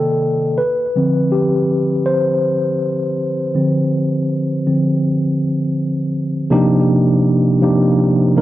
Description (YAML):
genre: R&B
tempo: 81 BPM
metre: 4/4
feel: swing 58% on 16ths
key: unclear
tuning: A4 = 440 Hz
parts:
  - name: mellow tine electric piano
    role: solo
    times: 0.0-8.4 s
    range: C3 to C5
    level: -14 LUFS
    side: equal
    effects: medium stereo tremolo, cassette tape, analog delay
room: light reverb, digital ambience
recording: home recording on cassette, nothing above 7.5 kHz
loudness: -14 LUFS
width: side -14 dB against mid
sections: 0.0-6.5 A section; 6.5-8.4 B section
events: tine electric piano solo 0.0-6.5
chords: 0.0 Cm9; 0.6 Dm7; 6.5 Cm11